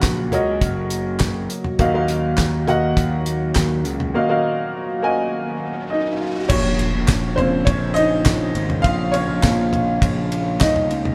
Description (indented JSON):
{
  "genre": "piano-driven pop",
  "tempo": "102 BPM",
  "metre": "4/4",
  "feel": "straight",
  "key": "Bb minor",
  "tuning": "A4 = 441 Hz",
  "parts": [
    { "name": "clear upright piano", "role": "accompaniment", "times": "0.0-11.1 s", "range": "Bb2 to Ab5", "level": "-24 LUFS", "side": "equal", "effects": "none" },
    { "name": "chorused pulse-width pad", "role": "sustained chords", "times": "0.0-11.1 s", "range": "Db3 to Gb4", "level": "-31 LUFS", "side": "equal", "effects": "none" },
    { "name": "fuzz picked electric bass", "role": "bass", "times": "0.0-11.1 s", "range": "Gb1 to Eb2", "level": "-25 LUFS", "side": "equal", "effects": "overdrive" },
    { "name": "damped 70s drum kit", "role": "drums", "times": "0.0-11.1 s", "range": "crash cymbal, handclaps, hi-hat, kick drum, ride cymbal, snare drum, toms", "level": "-24 LUFS", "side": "equal", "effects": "none" },
    { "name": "riser and impact", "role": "sound effects", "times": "5.4-8.8 s", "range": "none", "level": "-32 LUFS", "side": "equal", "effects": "none" }
  ],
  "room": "moderate stone room reverb, RT60 0.9 s",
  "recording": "band playing live in one room",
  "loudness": "-20 LUFS",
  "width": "mono",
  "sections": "0.0-6.5 A section; 6.5-11.1 B section",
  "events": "break 4.1-6.5; riser 5.4-6.5; impact 6.5-8.8; upright piano solo 6.5-11.1",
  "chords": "0.0 Gb; 1.8 Ebmadd9; 6.5 Bbmadd9"
}